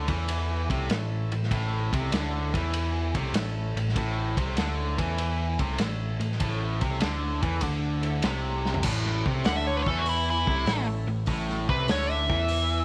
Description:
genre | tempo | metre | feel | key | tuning
blues rock power trio and southern rock | 98 BPM | 4/4 | swing 68% on 8ths | A major | A4 = 440 Hz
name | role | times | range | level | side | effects
tonewheel organ | sustained chords | 0.0-12.5 s | A3 to B5 | -42 LUFS | equal | overdrive, slow rotary speaker
distorted electric guitar | riff | 0.0-12.8 s | A2 to E3 | -34 LUFS | equal | overdrive
overdriven picked electric bass | bass | 0.0-12.8 s | A1 to E2 | -32 LUFS | equal | none
vintage drum kit | drums | 0.1-12.7 s | crash cymbal, hi-hat, kick drum, ride cymbal, snare drum, toms | -33 LUFS | equal | none
nasal lead guitar with a parked wah | melody | 9.5-12.8 s | E4 to F#5 | -30 LUFS | equal | overdrive, slapback echo
room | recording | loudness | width
studio ambience | none | -27 LUFS | mono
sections
0.0-8.8 A section; 8.8-12.8 B section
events
tonewheel organ fill 7.6-8.8; drum fill 8.5-8.8; lead electric guitar solo 8.8-12.8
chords
0.0 A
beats
0.28 0.90 | 1.51 2.12 2.73 3.34 | 3.95 4.57 5.18 5.79 | 6.40 7.01 7.62 8.22 | 8.83 9.44 10.05 10.66 | 11.27 11.88 12.49

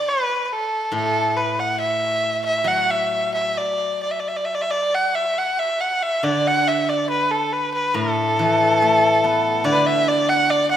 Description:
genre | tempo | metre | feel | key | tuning
chinese traditional, Chinese chamber ensemble | 66-71 BPM | 4/4 | rubato | D gong mode | A4 = 440 Hz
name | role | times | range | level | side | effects
rich erhu | melody | 0.0-10.8 s | A4 to F#5 | -19 LUFS | equal | none
steel-string zither | accompaniment | 0.9-10.8 s | A2 to B3 | -23 LUFS | left 1 dB | none
room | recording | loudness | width
moderate scoring stage reverb, RT60 1.6 s | minimal, uncompressed stereo recording | -18 LUFS | side -10 dB against mid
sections
0.0-4.5 A section; 4.5-10.8 B section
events
none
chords
none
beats
0.09 | 0.94 1.79 2.67 3.57 | 4.47 5.36 6.24 7.10 | 7.96 8.81 9.66 10.51

